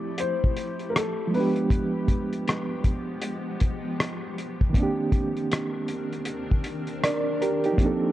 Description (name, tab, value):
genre	lo-fi hip hop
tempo	79 BPM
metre	4/4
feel	swing 63% on 16ths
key	unclear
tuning	A4 = 440 Hz
part	dark upright piano	melody	0.0-2.8 s	A4 to D5	-31 LUFS	left 4 dB	low-pass filter
part	reed electric piano	accompaniment	0.0-8.1 s	Eb3 to D5	-27 LUFS	right 2 dB	overdrive, medium tremolo, cassette tape, low-pass filter
part	granular cloud pad	sustained chords	0.0-8.1 s	D3 to Bb4	-34 LUFS	left 3 dB	built-in reverb, low-pass filter
part	cloth-damped thuddy drum kit	drums	0.2-8.0 s	hi-hat, kick drum, rim click	-25 LUFS	equal	vintage 12-bit sampler grit
room	light reverb, small room ambience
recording	cassette tape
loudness	-24 LUFS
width	side -14 dB against mid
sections	0.0-8.1 A section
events	none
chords	0.0 Fmaj9; 1.3 G7b9; 4.7 Cm9